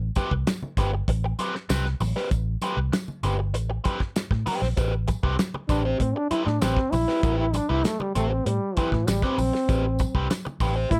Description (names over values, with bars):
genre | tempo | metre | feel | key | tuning
funk | 98 BPM | 4/4 | straight | A minor | A4 = 440 Hz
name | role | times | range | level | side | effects
vintage muted fingered electric bass | bass | 0.0-11.0 s | G1 to A2 | -28 LUFS | equal | none
biting overdriven guitar | accompaniment | 0.2-11.0 s | C4 to C5 | -32 LUFS | equal | wah
damped 70s drum kit | drums | 0.2-11.0 s | hi-hat, kick drum, snare drum | -29 LUFS | equal | none
congas | percussion | 0.2-11.0 s | none | -38 LUFS | equal | none
tambourine | percussion | 0.2-11.0 s | none | -45 LUFS | equal | none
warm trombone | melody | 5.7-11.0 s | E3 to E4 | -28 LUFS | equal | slapback echo
room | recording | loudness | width
little or no reverb | none | -25 LUFS | mono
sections
0.0-4.8 A section; 4.8-11.0 B section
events
trombone solo 4.8-11.0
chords
0.0 Am9